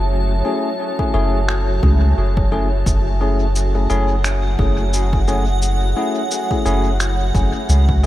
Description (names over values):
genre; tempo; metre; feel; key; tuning
ambient dub; 87 BPM; 4/4; swing 57% on 16ths; F# minor; A4 = 440 Hz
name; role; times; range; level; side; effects
granular cloud pad; sustained chords; 0.0-8.1 s; F#4 to A5; -24 LUFS; equal; built-in reverb
soft dub sub bass; bass; 0.0-8.1 s; F#1 to C#2; -17 LUFS; equal; none
bell-like tine electric piano; stabs; 0.5-8.1 s; A3 to G#4; -22 LUFS; left 2 dB; lush chorus, dub echo
electronic kick drum; drums; 1.0-8.0 s; none; -21 LUFS; equal; overdrive
electronic finger snaps and cabasa; drums; 1.5-8.1 s; none; -28 LUFS; equal; dub echo
room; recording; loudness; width
light reverb; none; -15 LUFS; side -14 dB against mid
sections
0.0-8.1 A section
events
none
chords
0.0 F#m7